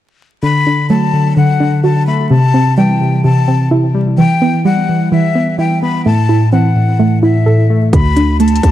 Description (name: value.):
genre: hip hop, trap.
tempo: 128 BPM.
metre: 4/4.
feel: half-time.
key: unclear.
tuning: A4 = 442 Hz.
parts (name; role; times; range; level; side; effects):
breathy jazz flute; second line; 0.4-8.7 s; E5 to B5; -18 LUFS; left 7 dB; tape echo.
warbly lo-fi synth keys; accompaniment; 0.4-8.0 s; A2 to B3; -12 LUFS; left 1 dB; chorus, low-pass filter.
soft round pluck; arpeggios; 0.4-8.7 s; C3 to A4; -15 LUFS; right 2 dB; chorus, low-pass filter, tape echo.
growling 808-style bass; bass; 7.9-8.7 s; D2; -13 LUFS; equal; none.
trap drum kit; drums; 7.9-8.7 s; hi-hat, kick drum; -12 LUFS; equal; none.
room: light reverb.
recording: dark, warm production, vinyl crackle.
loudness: -10 LUFS.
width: side -12 dB against mid.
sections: 0.4-7.9 A section.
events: none.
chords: 0.4 D; 2.3 C; 4.2 Em; 6.1 Am; 7.9 D5.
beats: | 0.43 0.90 1.37 1.84 | 2.31 2.77 3.24 3.71 | 4.18 4.65 5.12 5.59 | 6.05 6.52 6.99 7.46 | 7.93 8.40.